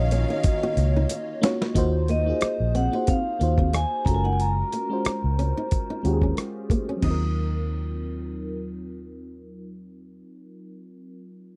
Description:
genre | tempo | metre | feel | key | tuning
R&B, neo-soul | 91 BPM | 4/4 | swing 55% on 16ths | Eb dorian | A4 = 440 Hz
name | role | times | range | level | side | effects
vibraphone with medium hard mallets | melody | 0.0-10.2 s | Eb5 to Eb6 | -32 LUFS | equal | low-pass filter, slapback echo
FM electric piano with soft pad layer | accompaniment | 0.0-11.6 s | Gb3 to Eb5 | -32 LUFS | equal | chorus, low-pass filter
rich studio string section | sustained chords | 0.0-1.7 s | Eb3 to F5 | -37 LUFS | equal | none
vintage muted fingered electric bass | bass | 0.0-10.2 s | Gb1 to Eb2 | -26 LUFS | equal | none
nylon-string guitar | second line | 0.1-7.2 s | Bb3 to Gb4 | -33 LUFS | equal | none
dusty soul sampler-style drum kit | drums | 0.1-7.2 s | crash cymbal, hi-hat, kick drum, rim click, snare drum | -27 LUFS | equal | none
room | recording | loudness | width
little or no reverb | dry, close 1970s-style studio recording | -24 LUFS | mono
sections
0.0-1.7 A section; 1.7-7.0 B section; 7.0-9.7 C section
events
drum fill 0.4-1.7; filter sweep 1.7-7.0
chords
0.0 Ebm9; 1.7 Ebm69; 4.1 Gbmaj7; 7.0 Ebm69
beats
0.43 1.09 | 1.75 2.41 3.07 3.73 | 4.39 5.05 5.71 6.37 | 7.02 7.68 8.34 9.00

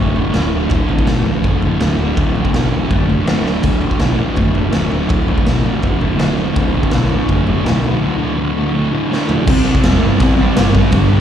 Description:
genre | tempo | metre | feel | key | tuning
garage rock duo or trio | 164 BPM | 4/4 | straight | D mixolydian | A4 = 440 Hz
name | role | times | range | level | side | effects
thick fuzz guitar | riff | 0.0-11.2 s | D2 to C4 | -16 LUFS | equal | distortion
growling picked electric bass | bass | 0.0-11.2 s | D1 to C2 | -18 LUFS | equal | overdrive
raw garage drum kit | drums | 0.2-11.0 s | crash cymbal, kick drum, snare drum, splash cymbal, toms | -18 LUFS | equal | none
room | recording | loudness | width
light reverb | live gig heard through the venue's PA, club reverb | -13 LUFS | side -9 dB against mid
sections
0.0-9.5 A section; 9.5-11.2 B section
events
drum fill 3.5, 9.1-9.5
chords
0.0 D; 9.5 C5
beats
0.35 | 0.72 1.08 1.45 1.81 | 2.18 2.54 2.91 3.27 | 3.64 4.00 4.37 4.74 | 5.10 5.47 5.83 6.20 | 6.56 6.93 7.29 7.66 | 8.02 8.39 8.75 9.12 | 9.48 9.84 10.21 10.57 | 10.93

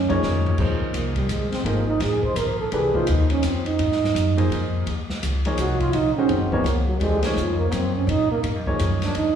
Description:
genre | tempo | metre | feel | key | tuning
modal jazz | 168 BPM | 3/4 | swing 63% on 8ths | Eb dorian | A4 = 440 Hz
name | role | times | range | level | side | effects
breathy trombone | second line | 0.0-9.4 s | Db3 to C5 | -23 LUFS | right 4 dB | slapback echo
upright bass | bass | 0.0-9.4 s | Gb1 to Bb2 | -24 LUFS | equal | none
clear grand piano | accompaniment | 0.1-9.1 s | Eb3 to Db5 | -26 LUFS | left 1 dB | slapback echo
open jazz drum kit | drums | 0.1-9.3 s | crash cymbal, hi-hat, kick drum, ride cymbal, snare drum, toms | -29 LUFS | left 2 dB | none
room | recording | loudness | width
light reverb | live gig heard through the venue's PA, recital hall reverb, small room ambience | -20 LUFS | side -8 dB against mid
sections
0.0-9.4 A section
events
trombone solo 0.0-9.4; drum fill 0.2-0.6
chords
0.0 Ebm9; 0.6 Fm7; 4.9 Ebm9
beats
0.22 | 0.58 0.94 1.30 | 1.66 2.01 2.37 | 2.73 3.09 3.44 | 3.80 4.16 4.52 | 4.87 5.23 5.59 | 5.95 6.30 6.66 | 7.02 7.38 7.73 | 8.09 8.45 8.80 | 9.16

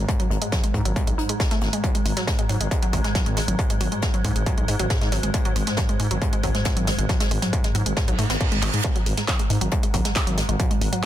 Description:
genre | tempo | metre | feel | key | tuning
driving peak-time techno | 137 BPM | 4/4 | straight | unclear | A4 = 440 Hz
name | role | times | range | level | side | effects
wide unison pluck | riff | 0.0-11.1 s | F#3 to D#4 | -28 LUFS | equal | overdrive, sidechain pumping, ping-pong delay
growling FM bass | bass | 0.0-10.9 s | G#1 to G#2 | -25 LUFS | equal | tube saturation, sidechain pumping
swarming drone | drone | 0.0-11.1 s | G#2 | -30 LUFS | equal | built-in reverb, sidechain pumping
electronic kick drum | drums | 0.1-10.7 s | none | -24 LUFS | equal | distortion, overdrive
soft brush drum kit | drums | 0.1-11.1 s | hi-hat, snare drum | -32 LUFS | left 2 dB | high-pass filter on hats, soft clipping on snare, high-pass filter on snare, high-pass filter on room
techno drum kit | drums | 0.1-11.0 s | handclaps, hi-hat | -30 LUFS | right 2 dB | overdrive
reverse cymbal | sound effects | 8.1-8.8 s | none | -30 LUFS | right 5 dB | none
room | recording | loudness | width
light reverb, digital ambience | dense, heavily limited modern master | -20 LUFS | side -12 dB against mid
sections
0.0-11.1 A section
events
reverse cymbal 8.1-8.8; drum fill 8.6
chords
none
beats
| 0.09 0.52 0.96 1.40 | 1.84 2.27 2.71 3.15 | 3.59 4.03 4.46 4.90 | 5.34 5.78 6.22 6.66 | 7.09 7.53 7.97 8.41 | 8.84 9.28 9.72 10.16 | 10.60 11.03

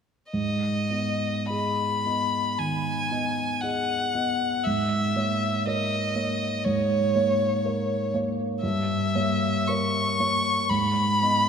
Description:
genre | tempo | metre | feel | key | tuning
classical, romantic duo for violin and grand piano | 49-62 BPM | 4/4 | rubato | G# minor | A4 = 440 Hz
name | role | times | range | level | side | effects
rich violin | melody | 0.3-11.5 s | C#5 to Db6 | -25 LUFS | left 1 dB | none
dark grand piano | accompaniment | 0.3-11.5 s | G2 to D#5 | -26 LUFS | right 1 dB | none
room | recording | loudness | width
wet concert hall reverb, RT60 2.5 s | none | -23 LUFS | side -6 dB against mid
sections
0.3-11.5 A section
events
none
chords
0.3 G#m; 4.7 A#m7b5/G#; 8.6 Gdim7; 10.7 G#m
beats
| 0.34 1.52 2.60 3.64 | 4.66 5.66 6.66 7.65 | 8.63 9.68 10.70

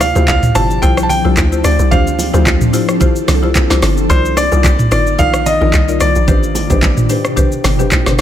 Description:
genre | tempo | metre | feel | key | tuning
amapiano | 110 BPM | 4/4 | swing 55% on 16ths | D minor | A4 = 440 Hz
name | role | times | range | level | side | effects
bright concert grand piano | melody | 0.0-7.9 s | C5 to A5 | -17 LUFS | equal | ping-pong delay
ethereal airy pad | sustained chords | 0.0-8.2 s | B2 to A4 | -20 LUFS | left 1 dB | ensemble chorus, built-in reverb, tremolo, sidechain pumping
buzzing marimba with medium mallets | stabs | 0.0-8.2 s | D4 to D5 | -20 LUFS | left 5 dB | ping-pong delay
hollow log drum bass | bass | 0.0-8.2 s | G1 to D2 | -15 LUFS | equal | none
smooth R&B drum kit | drums | 0.0-8.2 s | handclaps, hi-hat, kick drum, rim click, shaker, snare drum, toms | -14 LUFS | equal | none
bongos and congas | percussion | 0.0-8.1 s | none | -23 LUFS | right 5 dB | none
room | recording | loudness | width
little or no reverb | none | -10 LUFS | side -10 dB against mid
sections
0.0-8.2 A section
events
none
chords
0.0 Dm11; 4.1 Cm11; 6.3 Am11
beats
0.28 0.82 1.37 | 1.92 2.46 3.01 3.55 | 4.10 4.64 5.19 5.73 | 6.28 6.83 7.37 7.92

